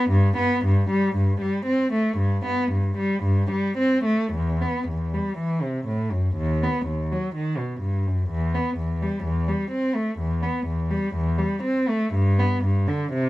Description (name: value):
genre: classical, baroque-style suite movement for unaccompanied cello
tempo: 54-64 BPM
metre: 4/4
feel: rubato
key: G major, E minor from 4.3 s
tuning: A4 = 441 Hz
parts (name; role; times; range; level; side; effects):
- rich cello; solo; 0.0-13.3 s; D#2 to C4; -21 LUFS; equal; none
room: little or no reverb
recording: close, detailed microphones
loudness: -21 LUFS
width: side -17 dB against mid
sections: 0.0-4.3 A section; 4.3-13.3 A section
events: none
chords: none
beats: | 0.11 1.17 2.21 3.26 | 4.35 5.38 6.37 7.34 | 8.30 9.24 10.19 11.15 | 12.15 13.13